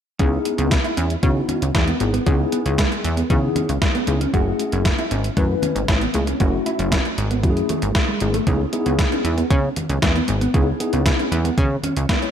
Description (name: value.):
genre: early-eighties boogie funk.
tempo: 116 BPM.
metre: 4/4.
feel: straight.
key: C# minor.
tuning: A4 = 440 Hz.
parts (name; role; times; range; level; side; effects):
mellow tine electric piano; accompaniment; 0.2-12.3 s; A3 to C#5; -24 LUFS; left 3 dB; medium stereo tremolo, slapback echo.
mellow electric guitar; riff; 0.2-12.3 s; G#3 to F#4; -26 LUFS; right 2 dB; lush chorus.
plucky analog bass; bass; 0.2-12.1 s; F#1 to C#3; -22 LUFS; equal; none.
clean 12-bit digital drum machine; drums; 0.2-12.3 s; hi-hat, kick drum, snare drum; -21 LUFS; equal; none.
congas; percussion; 0.2-12.2 s; none; -31 LUFS; left 2 dB; none.
room: moderate lush hall reverb, RT60 1.8 s, digital ambience.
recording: big arena sound.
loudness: -17 LUFS.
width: side -8 dB against mid.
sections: 0.2-8.5 A section; 8.5-12.3 B section.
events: none.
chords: 0.2 C#m9; 4.3 F#m9; 8.5 C#m9.